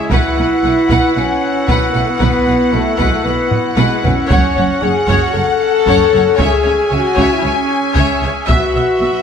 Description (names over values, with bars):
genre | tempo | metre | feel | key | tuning
cinematic, epic orchestral film score | 115 BPM | 4/4 | straight | unclear | A4 = 440 Hz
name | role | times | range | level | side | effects
warm symphonic violin section | melody | 0.0-9.2 s | E5 to G#5 | -21 LUFS | left 3 dB | none
chamber organ, soft reed | sustained chords | 0.0-9.2 s | C#4 to G#5 | -21 LUFS | equal | none
warm French horn section | sustained chords | 0.0-9.2 s | G#3 to A4 | -16 LUFS | left 3 dB | none
rich symphonic violin section | second line | 0.1-9.1 s | E5 to F#5 | -24 LUFS | equal | none
rich symphonic viola section | accompaniment | 0.1-9.1 s | B4 to E5 | -22 LUFS | left 2 dB | none
rich symphonic cello section | bass | 0.1-9.1 s | F#2 to C#3 | -21 LUFS | right 3 dB | none
rich symphonic double bass section | bass | 0.1-9.1 s | F#1 to C#2 | -22 LUFS | right 3 dB | none
taiko ensemble | drums | 0.1-9.0 s | none | -18 LUFS | equal | none
room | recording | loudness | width
moderate scoring stage reverb, RT60 1.5 s | none | -11 LUFS | side -7 dB against mid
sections
0.0-9.2 A section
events
drum fill 3.5-4.3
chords
0.1 Bsus4; 4.3 F#m; 6.4 C#m; 8.5 Bsus4